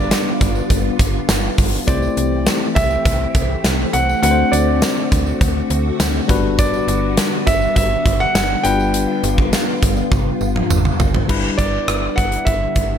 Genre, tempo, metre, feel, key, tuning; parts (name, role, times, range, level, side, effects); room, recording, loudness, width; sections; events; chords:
1980s-style pop; 102 BPM; 4/4; straight; G major; A4 = 440 Hz
warm concert grand piano; melody; 0.0-13.0 s; D5 to G5; -21 LUFS; right 2 dB
bell-like tine electric piano; accompaniment; 0.0-13.0 s; G3 to C5; -22 LUFS; left 7 dB
soft string machine; sustained chords; 0.0-13.0 s; D3 to G4; -24 LUFS; equal; phaser, ensemble chorus
slap-like FM bass; bass; 0.0-13.0 s; G1 to D2; -22 LUFS; right 1 dB
gated 80s drum kit; drums; 0.1-12.9 s; crash cymbal, hi-hat, kick drum, rim click, snare drum, tambourine, toms; -18 LUFS; equal; gated reverb
tambourine; percussion; 0.1-11.1 s; -35 LUFS; right 9 dB
light reverb; -14 LUFS; side -8 dB against mid
0.0-11.3 A section; 11.3-13.0 B section
drum fill 10.1-11.3
0.0 G7; 1.9 C6; 4.2 D7; 6.3 Gmaj7; 8.6 G7; 11.3 G6